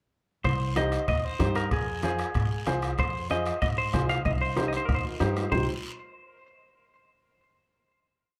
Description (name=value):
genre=latin, cumbia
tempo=189 BPM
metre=4/4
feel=straight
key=C minor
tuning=A4 = 442 Hz
part: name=semi-hollow electric guitar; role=melody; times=0.4-5.7 s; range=Ab4 to F5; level=-33 LUFS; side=equal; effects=spring reverb
part: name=upright bass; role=bass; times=0.4-5.7 s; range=C2 to Ab2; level=-33 LUFS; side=equal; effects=none
part: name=bombo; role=percussion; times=0.4-5.6 s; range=none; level=-34 LUFS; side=equal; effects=none
part: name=guiro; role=percussion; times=0.4-5.6 s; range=none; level=-47 LUFS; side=equal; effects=none
part: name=timbales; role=percussion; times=0.4-5.6 s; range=none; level=-43 LUFS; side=equal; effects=none
part: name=congas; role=percussion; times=0.5-5.6 s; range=none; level=-38 LUFS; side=equal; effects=none
part: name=bright upright piano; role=accompaniment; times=0.8-5.7 s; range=Eb4 to C5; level=-33 LUFS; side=equal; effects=none
room=light reverb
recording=none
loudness=-28 LUFS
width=mono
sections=0.4-5.5 A section; 5.5-6.8 final chord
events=drum fill 4.3-5.5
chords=0.4 Cm; 1.7 Fm; 4.3 Cm